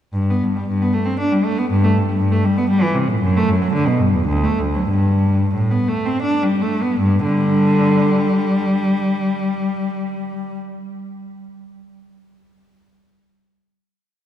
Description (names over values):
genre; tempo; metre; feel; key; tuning
classical, baroque-style suite movement for unaccompanied cello; 74-124 BPM; 3/4; rubato; G major; A4 = 440 Hz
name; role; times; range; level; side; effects
rich cello; solo; 0.1-10.6 s; D2 to D4; -16 LUFS; equal; none
room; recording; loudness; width
wet church reverb, RT60 3.6 s; dark, warm production; -16 LUFS; side -10 dB against mid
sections
0.1-7.0 A section; 7.0-11.5 final chord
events
slowing down 2.4-7.0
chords
0.1 G; 1.7 A7(no3)/G; 3.2 D/F#; 4.3 D; 4.9 G; 7.0 G5